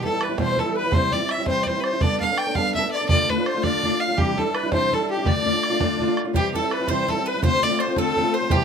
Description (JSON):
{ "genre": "celtic folk, Celtic jig", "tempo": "111 BPM (dotted quarters)", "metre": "6/8", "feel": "straight", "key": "D dorian", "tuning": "A4 = 442 Hz", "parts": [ { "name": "clear fiddle", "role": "melody", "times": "0.0-8.6 s", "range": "G4 to G5", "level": "-24 LUFS", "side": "left 1 dB", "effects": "none" }, { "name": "musette accordion", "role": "second line", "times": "0.0-8.6 s", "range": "G4 to G5", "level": "-28 LUFS", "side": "left 2 dB", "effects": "none" }, { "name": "fingerpicked steel-string acoustic guitar", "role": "accompaniment", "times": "0.0-8.6 s", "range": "E2 to A4", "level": "-24 LUFS", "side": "equal", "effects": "none" }, { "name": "bodhran", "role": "percussion", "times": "0.0-8.6 s", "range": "none", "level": "-25 LUFS", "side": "right 2 dB", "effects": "none" }, { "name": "bowl-back mandolin", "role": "second line", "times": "6.4-8.6 s", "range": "G4 to D5", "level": "-31 LUFS", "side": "right 6 dB", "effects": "none" } ], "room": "moderate studio reverb, RT60 0.5 s", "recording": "minimal, uncompressed stereo recording", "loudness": "-19 LUFS", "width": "side -6 dB against mid", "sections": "0.0-6.3 A section; 6.3-8.6 A section", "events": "none", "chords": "0.0 Em; 0.9 C; 2.0 Gadd9; 3.1 Dm; 4.2 Cadd9; 5.3 Dm; 6.3 C; 7.4 Dm7", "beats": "0.39 | 0.93 1.47 | 2.01 2.55 | 3.09 3.63 | 4.18 4.72 | 5.26 5.80 | 6.34 6.89 | 7.43 7.97 | 8.51" }